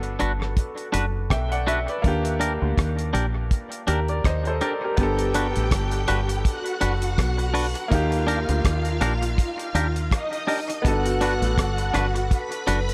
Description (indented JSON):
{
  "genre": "lovers rock reggae",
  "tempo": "82 BPM",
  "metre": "4/4",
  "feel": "swing 57% on 16ths",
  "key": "unclear",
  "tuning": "A4 = 438 Hz",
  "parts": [
    { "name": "bright grand piano", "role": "accompaniment", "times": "0.0-12.9 s", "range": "Bb3 to G5", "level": "-31 LUFS", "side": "equal", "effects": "dub echo" },
    { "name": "deep dub fingered electric bass", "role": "bass", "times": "0.0-12.9 s", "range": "F#1 to Eb2", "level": "-27 LUFS", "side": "equal", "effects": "none" },
    { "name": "cloth-damped thuddy drum kit", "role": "drums", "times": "0.0-12.9 s", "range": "hi-hat, kick drum, rim click", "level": "-28 LUFS", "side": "equal", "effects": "dub echo" },
    { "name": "twangy electric guitar", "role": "stabs", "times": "0.2-12.8 s", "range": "D4 to B4", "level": "-31 LUFS", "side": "equal", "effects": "dub echo" },
    { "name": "string machine, violins", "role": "second line", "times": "5.0-12.9 s", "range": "Eb4 to B5", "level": "-32 LUFS", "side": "equal", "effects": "ensemble chorus" }
  ],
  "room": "light reverb, small room ambience",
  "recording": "none",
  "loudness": "-24 LUFS",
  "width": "mono",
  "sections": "0.0-5.0 A section; 5.0-12.9 B section",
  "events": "none",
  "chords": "0.0 Gmaj7; 2.0 Ebmaj7; 5.0 Gmaj7; 7.9 Ebmaj7; 10.8 Gmaj7"
}